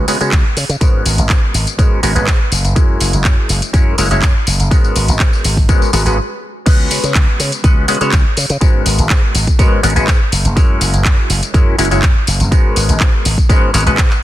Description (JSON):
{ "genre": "filtered disco house", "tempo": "123 BPM", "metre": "4/4", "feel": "straight", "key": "G# minor", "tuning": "A4 = 440 Hz", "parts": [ { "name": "mellow clav", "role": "accompaniment", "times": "0.0-14.0 s", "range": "G#3 to C#5", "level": "-19 LUFS", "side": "left 1 dB", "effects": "phaser, sidechain pumping, low-pass filter" }, { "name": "slap bass with an envelope filter", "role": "bass", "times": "0.0-14.1 s", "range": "F#1 to C#3", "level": "-16 LUFS", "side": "equal", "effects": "tube saturation, sidechain pumping, low-pass filter" }, { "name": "house drum kit", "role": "drums", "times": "0.1-14.2 s", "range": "crash cymbal, handclaps, hi-hat, tambourine", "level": "-18 LUFS", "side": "equal", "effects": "sidechain pumping on hats, sidechain pumping on perc, sidechain pumping on cymbals" }, { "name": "electronic kick drum", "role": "drums", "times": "0.3-14.1 s", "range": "none", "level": "-12 LUFS", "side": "equal", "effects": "none" } ], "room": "little or no reverb", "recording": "dense, heavily limited modern master", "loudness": "-10 LUFS", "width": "side -14 dB against mid", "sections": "0.0-6.7 A section; 6.7-14.2 B section", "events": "stop 6.2-6.7; drop 6.7-14.2", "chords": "0.0 C#7sus4; 0.8 G#m11; 2.5 F#9; 4.7 G#m11; 6.7 C#7sus4; 8.6 G#m11; 10.3 F#9; 12.5 G#m11" }